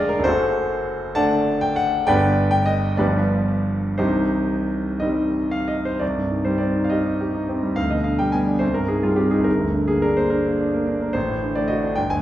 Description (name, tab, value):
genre	classical, romantic character piece for solo piano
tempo	57-73 BPM (dotted quarters)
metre	6/8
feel	rubato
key	C minor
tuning	A4 = 438 Hz
part	bright concert grand piano	solo	0.0-12.2 s	C1 to A5	-18 LUFS	equal	none
room	wet recital hall reverb, RT60 1.4 s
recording	heard from further back in the room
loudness	-18 LUFS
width	side -13 dB against mid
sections	0.0-6.0 A section; 6.0-12.2 B section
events	none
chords	0.2 D7/F#; 2.1 G; 3.0 G7; 4.0 Cm; 7.8 G/D; 8.6 Cm; 9.5 Gm; 11.2 D7/A